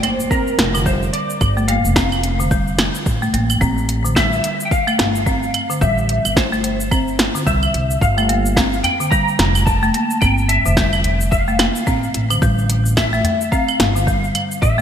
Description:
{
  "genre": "organic downtempo",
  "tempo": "109 BPM",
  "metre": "4/4",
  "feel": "swing 58% on 16ths",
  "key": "G dorian",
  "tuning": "A4 = 443 Hz",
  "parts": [
    { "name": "electric slide guitar", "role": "melody", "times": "0.0-14.8 s", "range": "Bb4 to Bb5", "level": "-21 LUFS", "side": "left 1 dB", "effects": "ensemble chorus, digital delay" },
    { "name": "folk marimba with hard mallets", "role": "arpeggios", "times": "0.0-14.8 s", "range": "D3 to C4", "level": "-22 LUFS", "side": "equal", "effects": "ping-pong delay" },
    { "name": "deep house drum kit", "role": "drums", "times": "0.0-14.8 s", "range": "claves, hi-hat, shaker, snare drum", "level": "-21 LUFS", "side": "right 1 dB", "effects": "overdrive, gated reverb" },
    { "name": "impact", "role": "sound effects", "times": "0.0-1.4 s", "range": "none", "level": "-36 LUFS", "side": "equal", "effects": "none" },
    { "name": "electronic kick drum", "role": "drums", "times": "0.3-14.8 s", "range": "none", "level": "-19 LUFS", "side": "equal", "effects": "overdrive" },
    { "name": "upright bass", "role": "bass", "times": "0.6-14.8 s", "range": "F1 to C2", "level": "-20 LUFS", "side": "equal", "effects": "sidechain pumping" },
    { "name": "udu", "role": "percussion", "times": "8.8-13.4 s", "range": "none", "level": "-25 LUFS", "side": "left 1 dB", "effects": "none" }
  ],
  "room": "light reverb, digital ambience",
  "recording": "bright 1980s-style digital production",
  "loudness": "-14 LUFS",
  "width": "side -9 dB against mid",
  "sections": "0.0-14.8 A section",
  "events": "impact 0.0-1.4",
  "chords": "0.0 Gm7; 3.6 Am7; 8.0 Gm7; 12.4 Am7"
}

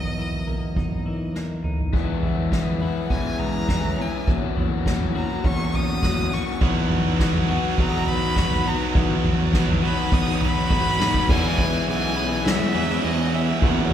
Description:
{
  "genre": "post-rock",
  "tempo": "103 BPM",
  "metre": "4/4",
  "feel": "straight",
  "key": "E lydian",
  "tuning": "A4 = 439 Hz",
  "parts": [
    { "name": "clear violin", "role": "melody", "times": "0.0-13.9 s", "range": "D#5 to D#6", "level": "-28 LUFS", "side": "equal", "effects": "none" },
    { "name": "hollow soft pad", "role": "sustained chords", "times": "0.0-13.9 s", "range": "F#3 to G#5", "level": "-36 LUFS", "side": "equal", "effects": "ensemble chorus" },
    { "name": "twelve-string electric guitar", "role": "arpeggios", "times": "0.0-13.9 s", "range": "E2 to F#4", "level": "-31 LUFS", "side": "left 2 dB", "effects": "none" },
    { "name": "growling fingered electric bass", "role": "bass", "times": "0.0-13.9 s", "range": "B1 to E2", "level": "-27 LUFS", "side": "right 1 dB", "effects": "overdrive" },
    { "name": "soft-mallet drum kit", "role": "drums", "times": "0.0-13.9 s", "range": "crash cymbal, kick drum, ride cymbal, snare drum, toms", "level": "-24 LUFS", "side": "equal", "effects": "none" },
    { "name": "overdriven electric guitar", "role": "riff", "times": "1.9-13.9 s", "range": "B2 to F#4", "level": "-27 LUFS", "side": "left 6 dB", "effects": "none" },
    { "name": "tight distorted guitar", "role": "riff", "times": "6.6-13.9 s", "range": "E2 to B3", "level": "-27 LUFS", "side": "right 7 dB", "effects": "distortion" }
  ],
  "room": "wet recital hall reverb, RT60 1.4 s",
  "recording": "recorded in a church or concert hall",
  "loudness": "-20 LUFS",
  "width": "side -10 dB against mid",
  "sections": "0.0-1.9 A section; 1.9-11.3 B section; 11.3-13.9 C section",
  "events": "drum fill 1.4-1.9, 10.7-11.3; build-up 1.9-11.3",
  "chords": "0.0 Bmaj7/E; 1.9 E6; 4.3 F#7/E; 6.6 B/E; 11.3 E6"
}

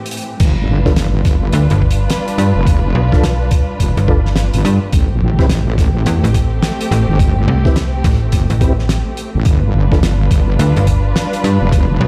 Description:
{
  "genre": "glitch hop",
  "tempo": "106 BPM",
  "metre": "4/4",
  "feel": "swing 62% on 16ths",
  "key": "unclear",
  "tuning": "A4 = 440 Hz",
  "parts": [
    { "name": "muted studio string section", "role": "sustained chords", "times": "0.0-12.1 s", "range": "A2 to B4", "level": "-24 LUFS", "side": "equal", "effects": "sidechain pumping" },
    { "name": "damped 70s drum kit", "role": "drums", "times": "0.1-11.9 s", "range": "crash cymbal, hi-hat, snare drum", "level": "-24 LUFS", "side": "equal", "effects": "studio reverb" },
    { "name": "wobble bass", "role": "bass", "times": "0.4-12.0 s", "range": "F1 to A1", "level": "-17 LUFS", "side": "equal", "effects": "chorus, tube saturation" },
    { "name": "electronic kick drum", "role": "drums", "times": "0.4-11.9 s", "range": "none", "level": "-16 LUFS", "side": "equal", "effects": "studio reverb" },
    { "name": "tonewheel organ", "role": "stabs", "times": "0.9-10.0 s", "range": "C4 to B4", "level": "-25 LUFS", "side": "equal", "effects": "chorus vibrato, slow rotary speaker, sidechain pumping, dub echo" },
    { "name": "slap-like FM bass", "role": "bass", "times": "1.5-12.1 s", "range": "G1 to G2", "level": "-16 LUFS", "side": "equal", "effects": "tube saturation" }
  ],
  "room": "studio reverb",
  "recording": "played on a big sound system in a bare room, stone room reverb",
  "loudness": "-14 LUFS",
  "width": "mono",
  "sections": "0.4-12.1 A section",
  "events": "drop 0.4-12.1",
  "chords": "0.4 G7; 4.9 Am7; 9.5 G7"
}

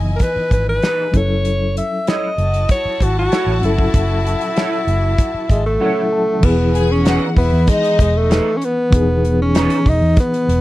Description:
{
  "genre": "lush 1970s-style soul",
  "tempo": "96 BPM",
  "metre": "4/4",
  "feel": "straight",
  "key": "E major",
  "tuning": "A4 = 442 Hz",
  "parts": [
    { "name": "warm studio string section", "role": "second line", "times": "0.0-8.3 s", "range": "D#4 to A5", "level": "-25 LUFS", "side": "left 4 dB", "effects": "none" },
    { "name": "reed electric piano", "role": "accompaniment", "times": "0.0-10.6 s", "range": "E3 to A5", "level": "-22 LUFS", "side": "left 1 dB", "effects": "fast tremolo" },
    { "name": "vintage muted fingered electric bass", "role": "bass", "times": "0.0-10.6 s", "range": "E1 to E2", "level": "-18 LUFS", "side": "equal", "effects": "none" },
    { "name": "breathy alto saxophone", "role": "melody", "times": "0.2-10.6 s", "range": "G#3 to E5", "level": "-18 LUFS", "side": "equal", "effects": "none" },
    { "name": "damped 70s drum kit", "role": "drums", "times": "0.2-10.6 s", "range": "crash cymbal, hi-hat, kick drum, snare drum", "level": "-16 LUFS", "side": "equal", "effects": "none" },
    { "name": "electric guitar through a small old amp", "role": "riff", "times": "0.8-9.8 s", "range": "D#4 to C#5", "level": "-25 LUFS", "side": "right 6 dB", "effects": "ensemble chorus" }
  ],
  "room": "studio ambience",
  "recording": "dry, close 1970s-style studio recording",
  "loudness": "-14 LUFS",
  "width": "side -16 dB against mid",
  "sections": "0.0-6.4 A section; 6.4-10.6 B section",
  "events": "reed electric piano fill 5.2-6.4",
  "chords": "0.0 Emaj7; 1.1 F#m7; 6.4 Emaj7"
}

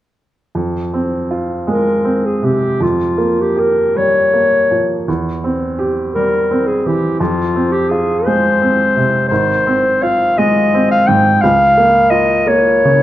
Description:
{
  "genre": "classical, romantic duo for clarinet and grand piano",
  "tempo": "52-58 BPM (dotted quarters)",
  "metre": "6/8",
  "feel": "rubato",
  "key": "F minor",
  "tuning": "A4 = 439 Hz",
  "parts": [
    { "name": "clear baby grand piano", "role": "accompaniment", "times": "0.5-13.0 s", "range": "Ab1 to G4", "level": "-16 LUFS", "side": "right 2 dB", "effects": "none" },
    { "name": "warm clarinet", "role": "melody", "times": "1.7-13.0 s", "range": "F4 to G5", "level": "-13 LUFS", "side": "left 1 dB", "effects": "none" }
  ],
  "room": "moderate recital hall reverb, RT60 1.3 s",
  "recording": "close, detailed microphones",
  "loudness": "-12 LUFS",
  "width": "side -13 dB against mid",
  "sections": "0.6-13.0 A section",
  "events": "none",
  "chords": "0.6 Fm; 2.8 Gm7b5/F; 5.1 C/E; 7.2 Fm; 9.3 Fm/Ab; 11.4 Bbm/Db"
}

